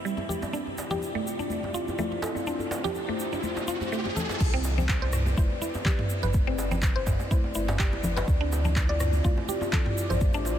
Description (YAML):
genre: afro house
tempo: 124 BPM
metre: 4/4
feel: swing 54% on 16ths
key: unclear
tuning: A4 = 440 Hz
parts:
  - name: dark analog pad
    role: sustained chords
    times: 0.0-10.6 s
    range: C4 to E5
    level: -34 LUFS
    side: left 2 dB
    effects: chorus, phaser, sidechain pumping
  - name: mallet-like synth pluck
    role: arpeggios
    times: 0.1-10.4 s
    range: G3 to D5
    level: -32 LUFS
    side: equal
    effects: chorus, sidechain pumping, analog delay
  - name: egg shaker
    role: percussion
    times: 0.1-10.6 s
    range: none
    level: -43 LUFS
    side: right 2 dB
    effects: none
  - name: congas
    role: percussion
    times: 0.2-10.3 s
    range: none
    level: -37 LUFS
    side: left 2 dB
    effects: none
  - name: djembe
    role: percussion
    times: 0.2-10.6 s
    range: none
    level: -38 LUFS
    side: right 2 dB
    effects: none
  - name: riser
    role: sound effects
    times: 1.7-4.4 s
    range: none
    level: -38 LUFS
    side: equal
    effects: none
  - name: warm sub bass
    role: bass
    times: 4.4-10.6 s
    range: G1 to D2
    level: -28 LUFS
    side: equal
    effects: sidechain pumping
  - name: deep house drum kit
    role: drums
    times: 4.4-10.2 s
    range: crash cymbal, handclaps, rim click, toms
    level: -32 LUFS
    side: equal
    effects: none
  - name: electronic kick drum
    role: drums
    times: 4.4-10.3 s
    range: none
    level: -25 LUFS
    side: equal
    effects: none
room: light reverb, digital ambience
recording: none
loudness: -25 LUFS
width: side -10 dB against mid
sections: 0.0-4.4 A section; 4.4-10.6 B section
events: riser 1.7-4.4; drop 4.4-10.6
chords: 0.0 Cmaj7; 0.5 Dm9; 4.4 Cmaj9; 8.3 Dm9